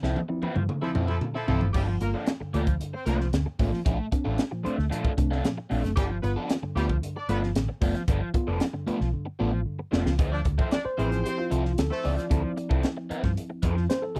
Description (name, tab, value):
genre	funk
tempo	114 BPM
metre	4/4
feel	straight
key	D dorian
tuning	A4 = 437 Hz
part	crunchy overdriven guitar	accompaniment	0.0-14.2 s	F3 to C5	-35 LUFS	equal	phaser
part	tine electric piano	stabs	0.0-14.2 s	G2 to D5	-34 LUFS	equal	none
part	hollow-body short-scale fingered electric bass	bass	0.0-14.2 s	F1 to G2	-30 LUFS	equal	none
part	crisp fusion drum kit	drums	0.0-14.2 s	crash cymbal, hi-hat, kick drum, snare drum, toms	-30 LUFS	equal	none
part	warm horn section	second line	0.8-12.1 s	F3 to D5	-36 LUFS	equal	slapback echo
room	little or no reverb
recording	none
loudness	-27 LUFS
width	mono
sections	0.0-1.7 A section; 1.7-10.2 B section; 10.2-14.2 C section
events	drum fill 0.0-1.7, 9.1-10.2; band accent 0.0-1.7; tine electric piano solo 10.2-14.2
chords	0.0 Dm9; 1.7 Gm9; 3.9 Bbmaj7; 6.0 G9; 10.2 Dm9